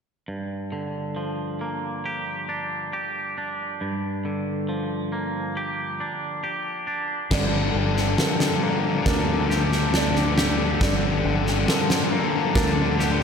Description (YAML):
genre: post-rock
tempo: 68 BPM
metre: 4/4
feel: straight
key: G minor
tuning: A4 = 440 Hz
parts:
  - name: twangy electric guitar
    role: arpeggios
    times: 0.3-13.2 s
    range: G2 to G4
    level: -27 LUFS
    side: right 1 dB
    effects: spring reverb, digital delay, slapback echo
  - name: felt-muted upright piano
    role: arpeggios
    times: 7.3-13.2 s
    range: Bb4 to D5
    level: -33 LUFS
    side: right 6 dB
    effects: digital delay, slapback echo
  - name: distorted electric guitar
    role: riff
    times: 7.3-13.2 s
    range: G2 to D3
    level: -24 LUFS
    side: left 6 dB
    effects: distortion, slapback echo
  - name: growling fingered electric bass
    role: bass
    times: 7.3-13.2 s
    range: G1 to D2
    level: -25 LUFS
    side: right 1 dB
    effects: overdrive
  - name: huge arena drum kit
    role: drums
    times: 7.3-13.2 s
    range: crash cymbal, kick drum, snare drum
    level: -24 LUFS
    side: right 1 dB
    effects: none
room: wet concert hall reverb, RT60 2.5 s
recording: big arena sound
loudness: -22 LUFS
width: side -6 dB against mid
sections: 0.3-7.3 A section; 7.3-13.2 B section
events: build-up 7.3-13.2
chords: 0.3 Gm7